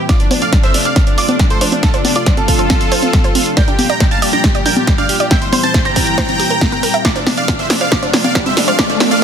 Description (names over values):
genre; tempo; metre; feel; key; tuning
uplifting trance; 138 BPM; 4/4; straight; D minor; A4 = 440 Hz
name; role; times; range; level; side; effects
lush unison pad; sustained chords; 0.0-9.2 s; Bb2 to F4; -22 LUFS; left 1 dB; chorus, sidechain pumping
supersaw chords; melody; 0.1-9.2 s; D4 to Bb5; -18 LUFS; equal; sidechain pumping, digital delay
warm grand piano; second line; 0.1-9.2 s; D5 to Bb6; -22 LUFS; right 3 dB; sidechain pumping, ping-pong delay
wide unison pluck; arpeggios; 0.1-9.0 s; C4 to E5; -21 LUFS; right 4 dB; sidechain pumping, ping-pong delay
electronic kick drum; drums; 0.1-8.9 s; none; -15 LUFS; equal; none
punchy analog drum machine; drums; 0.1-9.2 s; congas, hi-hat, snare drum; -16 LUFS; equal; none
riser; sound effects; 7.7-9.2 s; none; -20 LUFS; equal; none
room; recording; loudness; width
light reverb; dense, heavily limited modern master, high-pass filter; -11 LUFS; side -8 dB against mid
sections
0.1-9.2 A section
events
build-up 0.1-9.2; drum fill 0.1-9.2; filter sweep on synth arpeggio sound 0.1-9.2; filter sweep 0.1-9.2; riser 7.7-9.2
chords
0.1 Dm7; 3.6 Gm7; 5.3 C7; 7.0 Dm7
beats
| 0.09 0.53 0.96 1.40 | 1.83 2.27 2.70 3.13 | 3.57 4.00 4.44 4.87 | 5.31 5.74 6.18 6.61 | 7.05 7.48 7.92 8.35 | 8.79 9.22